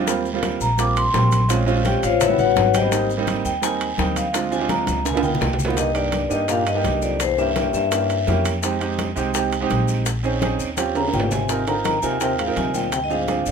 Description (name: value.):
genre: Afro-Cuban jazz.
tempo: 168 BPM.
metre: 4/4.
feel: straight.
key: C minor.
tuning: A4 = 440 Hz.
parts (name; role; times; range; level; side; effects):
warm concert grand piano; accompaniment; 0.0-13.5 s; G3 to Bb4; -24 LUFS; right 6 dB; none.
upright bass; bass; 0.0-13.5 s; G1 to G2; -25 LUFS; left 1 dB; none.
bongos; percussion; 0.1-13.5 s; none; -31 LUFS; left 8 dB; none.
congas; percussion; 0.1-13.5 s; none; -30 LUFS; left 4 dB; none.
guiro; percussion; 0.1-13.5 s; none; -36 LUFS; right 4 dB; none.
maracas; percussion; 0.1-13.5 s; none; -34 LUFS; left 11 dB; none.
timbales; percussion; 0.1-13.5 s; none; -28 LUFS; right 7 dB; none.
vibraphone with medium hard mallets; melody; 0.6-8.4, 11.0-13.5 s; E4 to D6; -22 LUFS; left 3 dB; none.
warm trombone; second line; 5.8-8.4, 11.0-13.5 s; E2 to Eb3; -27 LUFS; left 8 dB; none.
room: light reverb.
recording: minimal, uncompressed stereo recording.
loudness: -18 LUFS.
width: side -6 dB against mid.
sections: 0.0-5.8 A section; 5.8-13.5 B section.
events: vibraphone solo 0.0-5.8; drum fill 4.9-5.8, 10.8-11.5.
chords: 0.1 Eb6; 1.5 Bbm9; 2.2 A13; 2.9 Abmaj9; 4.3 Dm7b5; 5.1 Db13; 5.8 Cm9; 7.2 C7b9; 8.6 Fm7; 10.1 Bbm11; 10.8 Eb13; 11.5 Ab6; 12.9 Dm7b5.